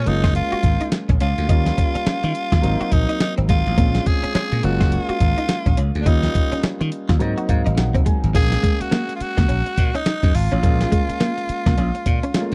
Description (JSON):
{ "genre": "R&B, new jack swing", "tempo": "105 BPM", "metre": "4/4", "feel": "swing 60% on 16ths", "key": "unclear", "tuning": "A4 = 443 Hz", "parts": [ { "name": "raspy tenor saxophone", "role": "melody", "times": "0.0-12.5 s", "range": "D4 to Ab4", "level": "-27 LUFS", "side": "equal", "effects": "none" }, { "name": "warm concert grand piano", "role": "accompaniment", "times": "0.0-12.5 s", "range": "Gb3 to Ab5", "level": "-29 LUFS", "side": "equal", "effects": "none" }, { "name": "slap bass", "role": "bass", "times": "0.0-12.5 s", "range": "Gb1 to Eb3", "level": "-23 LUFS", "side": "equal", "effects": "none" }, { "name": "dusty soul sampler-style drum kit", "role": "drums", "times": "0.1-12.5 s", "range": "crash cymbal, hi-hat, kick drum, snare drum", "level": "-22 LUFS", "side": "equal", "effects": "none" }, { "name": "direct-recorded clean electric guitar", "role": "riff", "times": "0.2-12.4 s", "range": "F3 to Gb4", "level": "-29 LUFS", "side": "equal", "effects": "ensemble chorus" } ], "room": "little or no reverb", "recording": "dry, close 1970s-style studio recording", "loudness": "-19 LUFS", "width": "mono", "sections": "0.0-8.3 A section; 8.3-12.5 B section", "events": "grand piano fill 7.2-8.3", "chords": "0.1 Gbmaj7; 1.5 Eb9; 2.6 Ab7; 3.8 Bbm9; 4.6 Gbmaj7; 6.1 Eb9; 7.2 Ab7; 8.3 Gbmaj9" }